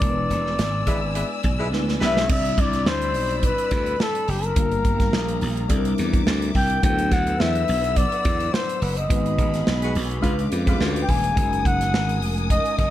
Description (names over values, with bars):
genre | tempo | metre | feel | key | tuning
polished 1980s jazz-funk pop | 106 BPM | 4/4 | swing 54% on 16ths | unclear | A4 = 440 Hz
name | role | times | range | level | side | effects
breathy flugelhorn | melody | 0.0-12.9 s | G4 to G#5 | -25 LUFS | left 2 dB | ping-pong delay
tine electric piano | accompaniment | 0.0-12.9 s | F#3 to D5 | -28 LUFS | left 2 dB | analog chorus
warm symphonic string section | sustained chords | 0.0-12.9 s | G4 to E6 | -33 LUFS | left 4 dB | none
glassy slap bass | bass | 0.0-12.9 s | D#1 to E#2 | -25 LUFS | equal | none
modern studio drum kit | drums | 0.0-12.9 s | crash cymbal, hi-hat, kick drum, snare drum | -24 LUFS | right 1 dB | none
warm horn section | second line | 0.9-2.4, 9.8-11.0 s | G3 to B4 | -30 LUFS | equal | none
room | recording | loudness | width
light reverb, small room ambience | dark, warm production | -19 LUFS | side -13 dB against mid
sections
0.0-2.3 A section; 2.3-12.9 B section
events
band accent 0.0-2.3, 9.1-11.4; drum fill 1.7-2.3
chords
0.0 E7; 2.3 Cmaj9; 4.6 Gm7; 5.7 C9; 6.8 D69; 9.1 G#m7; 10.2 C#7b9; 11.4 F#69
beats
| 0.02 0.59 1.16 1.72 | 2.29 2.86 3.43 4.00 | 4.57 5.13 5.70 6.27 | 6.83 7.40 7.97 8.54 | 9.10 9.67 10.23 10.80 | 11.37 11.93 12.50